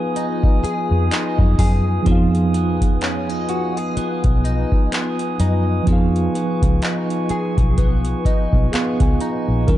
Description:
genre	contemporary R&B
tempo	63 BPM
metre	4/4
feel	swing 58% on 16ths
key	unclear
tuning	A4 = 440 Hz
part	mellow tine electric piano	accompaniment	0.0-9.8 s	F3 to Bb5	-23 LUFS	right 4 dB	medium stereo tremolo
part	glass harmonica	sustained chords	0.0-9.8 s	Eb4 to Eb6	-26 LUFS	left 2 dB	sidechain pumping
part	direct-recorded clean electric guitar	arpeggios	0.0-9.8 s	Eb3 to Ab4	-26 LUFS	left 5 dB	ensemble chorus, tape echo
part	booming analog drum machine	drums	0.2-9.8 s	handclaps, hi-hat, kick drum	-18 LUFS	equal	overdrive
part	vintage muted fingered electric bass	bass	0.6-9.8 s	Bb1 to Gb2	-19 LUFS	equal	none
room	digital ambience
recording	dark, warm production, nothing above 10.5 kHz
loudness	-16 LUFS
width	side -14 dB against mid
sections	0.0-2.1 A section; 2.1-9.7 B section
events	tine electric piano fill 7.8-9.7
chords	0.0 Fm7b5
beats	0.16 1.11 | 2.06 3.02 3.97 4.92 | 5.87 6.82 7.78 8.73 | 9.68

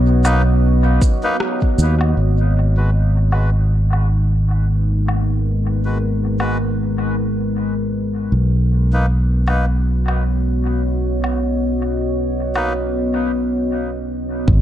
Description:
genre	ambient dub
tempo	78 BPM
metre	4/4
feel	swing 57% on 16ths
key	G# minor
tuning	A4 = 440 Hz
part	deep dark ambient pad	sustained chords	0.0-14.6 s	G#3 to D#5	-22 LUFS	left 1 dB	chorus, built-in reverb
part	fingered electric bass	bass	0.0-14.6 s	G#1 to D#2	-17 LUFS	equal	none
part	melodica	stabs	0.2-12.7 s	G#3 to B4	-26 LUFS	left 1 dB	low-pass filter, dub echo
part	electronic shaker, woodblock and rim click	drums	0.2-12.7 s	none	-28 LUFS	left 1 dB	low-pass filter on perc, low-pass filter on snare, low-pass filter on room, dub echo
part	electronic kick drum	drums	1.0-1.8, 14.5-14.6 s	none	-15 LUFS	equal	overdrive
room	light reverb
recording	dark, warm production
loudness	-15 LUFS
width	side -12 dB against mid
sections	0.0-2.2 A section; 2.2-14.5 B section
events	band accent 1.4-1.8; filter sweep on drum 2.2-14.5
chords	0.0 Bmaj7; 2.2 G#m7; 8.3 Bmaj7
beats	0.63 1.40 | 2.17 2.94 3.71 4.48 | 5.25 6.02 6.79 7.55 | 8.32 9.09 9.86 10.63 | 11.40 12.17 12.94 13.71 | 14.48

